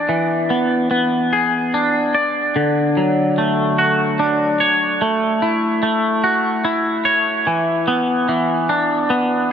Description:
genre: rock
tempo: 49 BPM (dotted quarters)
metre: 6/8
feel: straight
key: unclear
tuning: A4 = 441 Hz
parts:
  - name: twangy electric guitar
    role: solo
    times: 0.0-9.5 s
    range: D3 to D5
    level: -15 LUFS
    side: equal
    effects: analog chorus, analog delay
room: moderate huge ambient reverb, RT60 6.9 s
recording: none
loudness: -15 LUFS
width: side -8 dB against mid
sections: 0.0-9.5 A section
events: none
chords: 0.0 E7; 2.6 Dmaj7; 5.0 A6; 7.5 E7(no3)

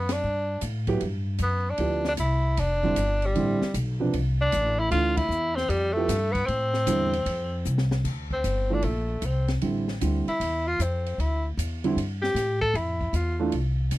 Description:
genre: modal jazz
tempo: 154 BPM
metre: 4/4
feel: swing 66% on 8ths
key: D minor from 8.0 s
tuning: A4 = 439 Hz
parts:
  - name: clear tenor saxophone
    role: melody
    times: 0.0-13.4 s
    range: G3 to A4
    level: -26 LUFS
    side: equal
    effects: none
  - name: upright bass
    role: bass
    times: 0.0-14.0 s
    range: F1 to A2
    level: -27 LUFS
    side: equal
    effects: none
  - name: open jazz drum kit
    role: drums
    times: 0.1-14.0 s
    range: crash cymbal, hi-hat, kick drum, ride cymbal, snare drum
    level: -36 LUFS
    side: left 1 dB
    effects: none
  - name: dark baby grand piano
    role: accompaniment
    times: 0.9-13.5 s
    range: C3 to G4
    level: -27 LUFS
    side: right 3 dB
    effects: none
room: little or no reverb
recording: dry, close 1970s-style studio recording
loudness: -23 LUFS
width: side -17 dB against mid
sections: 0.0-8.0 A section; 8.0-14.0 B section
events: band accent 0.0, 5.1; drum fill 7.7-8.0; tenor saxophone solo 8.0-14.0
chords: 0.0 Em9 (rootless); 1.8 Dm9; 8.0 Dm11

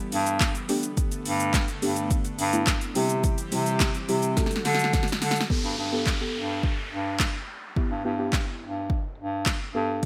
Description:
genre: dance-pop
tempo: 106 BPM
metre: 4/4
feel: straight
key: G major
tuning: A4 = 441 Hz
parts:
  - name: deep mellow chord stab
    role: accompaniment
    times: 0.0-10.1 s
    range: G3 to A4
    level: -33 LUFS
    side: equal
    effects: chorus, sidechain pumping
  - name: airy breathy pad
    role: sustained chords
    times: 0.0-5.5 s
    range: D3 to A4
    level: -38 LUFS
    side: equal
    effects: chorus, sidechain pumping
  - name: clear bass clarinet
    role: bass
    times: 0.1-10.1 s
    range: G2 to D3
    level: -30 LUFS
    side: equal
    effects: sidechain pumping
  - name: deep house drum kit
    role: drums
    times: 0.1-10.1 s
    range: handclaps, hi-hat, kick drum, shaker, snare drum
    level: -28 LUFS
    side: equal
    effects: overdrive
  - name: downlifter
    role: sound effects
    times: 5.5-10.0 s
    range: none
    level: -38 LUFS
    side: equal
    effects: none
room: light reverb, digital ambience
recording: bright 1980s-style digital production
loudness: -26 LUFS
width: mono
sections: 0.0-5.5 A section; 5.5-10.1 B section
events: drum fill 4.4-5.5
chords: 0.0 Em/G; 0.7 Gadd9; 3.0 C; 4.4 D; 5.5 Gadd9; 7.8 Em/G

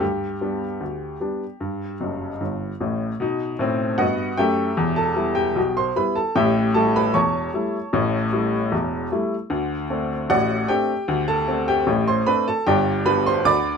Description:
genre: ragtime piano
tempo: 76 BPM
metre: 2/4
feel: straight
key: G major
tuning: A4 = 443 Hz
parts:
  - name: clear upright piano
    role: solo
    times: 0.0-13.8 s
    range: E1 to D6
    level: -19 LUFS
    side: equal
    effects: none
room: light reverb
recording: minimal, uncompressed stereo recording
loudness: -20 LUFS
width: side -6 dB against mid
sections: 0.0-3.2 A section; 3.2-13.8 B section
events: upright piano fill 2.0-3.2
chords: 0.0 G; 3.2 B7; 4.8 Em; 6.4 A7; 9.5 D7; 12.7 G

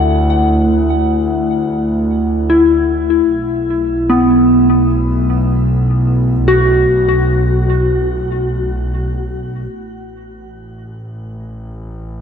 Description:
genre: ambient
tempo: free time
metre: none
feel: none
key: unclear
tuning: A4 = 443 Hz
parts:
  - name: soft synth bell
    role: arpeggios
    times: 0.0-9.7 s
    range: B3 to F#5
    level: -15 LUFS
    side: left 1 dB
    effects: chorus, ping-pong delay, shimmer reverb
  - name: warm studio double bass section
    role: bass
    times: 0.0-12.2 s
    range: A1 to D2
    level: -17 LUFS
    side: equal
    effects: none
  - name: analog drone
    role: drone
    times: 0.0-9.8 s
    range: A3 to E4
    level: -20 LUFS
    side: left 1 dB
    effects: chorus
room: wet concert hall reverb, RT60 2.3 s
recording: dark, warm production, nothing above 10.4 kHz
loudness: -12 LUFS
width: side -7 dB against mid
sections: 0.0-9.7 A section; 9.7-12.2 B section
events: none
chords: 0.0 D9; 3.3 B5; 9.7 N.C.

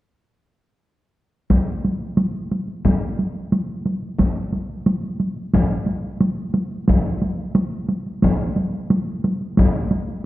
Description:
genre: japanese traditional, taiko drum ensemble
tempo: 89 BPM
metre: 4/4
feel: straight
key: none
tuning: none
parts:
  - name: solo taiko drums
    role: percussion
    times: 1.5-10.2 s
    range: none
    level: -21 LUFS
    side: right 1 dB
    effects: none
  - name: taiko ensemble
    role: percussion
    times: 1.5-9.7 s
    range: none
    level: -21 LUFS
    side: left 1 dB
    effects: none
room: wet recital hall reverb, RT60 1.6 s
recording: none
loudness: -19 LUFS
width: side -16 dB against mid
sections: 1.5-10.3 A section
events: none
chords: none

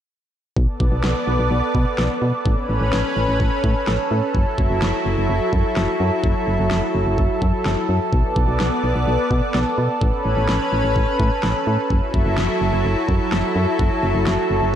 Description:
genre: synth-pop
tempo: 127 BPM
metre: 4/4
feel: straight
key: B minor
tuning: A4 = 439 Hz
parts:
  - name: lush unison pad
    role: sustained chords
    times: 0.6-14.8 s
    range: F#3 to D5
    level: -20 LUFS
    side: equal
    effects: chorus
  - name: solid FM bass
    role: bass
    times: 0.6-14.7 s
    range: F#1 to B2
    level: -21 LUFS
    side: equal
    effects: none
  - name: pop drum kit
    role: drums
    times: 0.6-14.4 s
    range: kick drum, snare drum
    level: -23 LUFS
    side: equal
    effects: none
room: moderate plate reverb, RT60 1.9 s, digital ambience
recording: dreamy mix soaked in reverb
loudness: -17 LUFS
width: side -10 dB against mid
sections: 0.6-14.8 A section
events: none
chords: 0.6 Bm7; 2.5 Aadd9; 4.3 F#m7; 8.1 Bm7; 10.0 Aadd9; 11.9 F#m7

